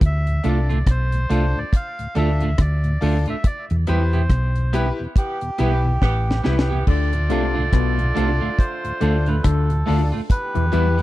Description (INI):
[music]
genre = roots reggae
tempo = 70 BPM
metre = 4/4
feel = swing 60% on 16ths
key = D dorian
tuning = A4 = 440 Hz
[part]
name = hollow-body short-scale fingered electric bass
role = bass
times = 0.0-11.0 s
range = A1 to E2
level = -19 LUFS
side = equal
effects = none
[part]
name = deep reggae drum kit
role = drums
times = 0.0-11.0 s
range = crash cymbal, hi-hat, kick drum, rim click, snare drum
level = -18 LUFS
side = equal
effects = none
[part]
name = melodica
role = melody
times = 0.1-11.0 s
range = G4 to F5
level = -28 LUFS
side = right 1 dB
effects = tape echo
[part]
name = mellow tonewheel organ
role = accompaniment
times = 0.3-11.0 s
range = D2 to F4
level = -29 LUFS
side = left 1 dB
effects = none
[part]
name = clean electric guitar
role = accompaniment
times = 0.4-11.0 s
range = G3 to G4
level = -28 LUFS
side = right 5 dB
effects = spring reverb, tape echo
[part]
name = bright baby grand piano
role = stabs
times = 0.4-11.0 s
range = D4 to B4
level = -28 LUFS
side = left 4 dB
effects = none
[part]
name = clear horn section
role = second line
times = 5.2-11.0 s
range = D3 to G4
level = -30 LUFS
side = right 3 dB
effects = tape echo
[part]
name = mellow clav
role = riff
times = 6.9-11.0 s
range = B2 to E3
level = -26 LUFS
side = left 12 dB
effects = none
[sound]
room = little or no reverb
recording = dry, close 1970s-style studio recording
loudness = -18 LUFS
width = side -16 dB against mid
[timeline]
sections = 0.0-6.9 A section; 6.9-11.0 B section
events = band accent 3.4-6.9; drum fill 6.0-6.9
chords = 0.0 Dm; 3.4 Em; 6.9 Dm; 10.3 Em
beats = | 0.01 0.87 1.73 2.59 | 3.44 4.30 5.16 6.02 | 6.87 7.73 8.59 9.44 | 10.30